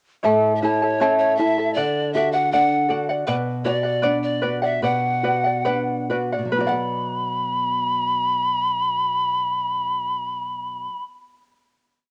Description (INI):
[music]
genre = andean folk, Andean ensemble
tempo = 64-80 BPM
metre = 2/4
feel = straight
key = B minor pentatonic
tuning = A4 = 439 Hz
[part]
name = charango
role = accompaniment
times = 0.2-11.2 s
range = E4 to A5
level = -24 LUFS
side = equal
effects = cassette tape
[part]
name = nylon-string guitar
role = accompaniment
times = 0.2-11.2 s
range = A2 to F#5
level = -30 LUFS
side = equal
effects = cassette tape
[part]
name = pan flute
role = melody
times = 0.3-11.0 s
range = A4 to B5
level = -24 LUFS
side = equal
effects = cassette tape
[sound]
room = light reverb, small room ambience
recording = home recording on cassette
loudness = -22 LUFS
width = mono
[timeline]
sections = 0.2-6.5 A section; 6.5-10.3 final chord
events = slowing down 3.3-6.5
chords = 0.2 A; 1.8 D; 3.3 Bm